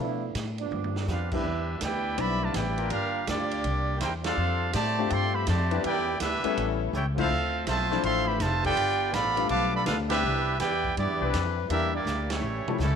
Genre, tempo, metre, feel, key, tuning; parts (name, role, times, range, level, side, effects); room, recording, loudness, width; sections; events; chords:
jazz, big band swing; 164 BPM; 4/4; swing 65% on 8ths; C major; A4 = 440 Hz
mellow trombone section; second line; 0.0-13.0 s; C3 to G4; -34 LUFS; right 11 dB
clear grand piano; accompaniment; 0.0-2.7, 5.0-12.8 s; E3 to G4; -33 LUFS; left 14 dB
upright bass; bass; 0.0-13.0 s; F1 to B2; -30 LUFS; left 1 dB
swinging big-band drum kit; drums; 0.3-12.9 s; crash cymbal, hi-hat, kick drum, ride cymbal, snare drum, toms; -37 LUFS; right 4 dB
clear trumpet section; melody; 1.1-13.0 s; G3 to D6; -28 LUFS; right 1 dB
bright trombone section; sustained chords; 2.8-11.7 s; E3 to C5; -36 LUFS; left 13 dB
light reverb, small room ambience; 1960s-style stereo with parts hard left and right; -25 LUFS; side -7 dB against mid
0.0-1.4 A section; 1.4-13.0 B section
trombone section solo 0.0-1.4; drum fill 0.7-1.4, 6.9-7.3, 12.1-12.8; band accent 1.3, 4.2, 7.1, 10.1, 12.2
0.0 Bm7b5; 0.7 G7; 1.4 Cmaj9; 2.9 Gm7; 3.6 C7; 4.4 F69; 5.8 Em7; 6.6 A7; 7.3 Dm9; 8.8 G9; 10.2 Cmaj9; 11.7 Em7b5; 12.4 A7b13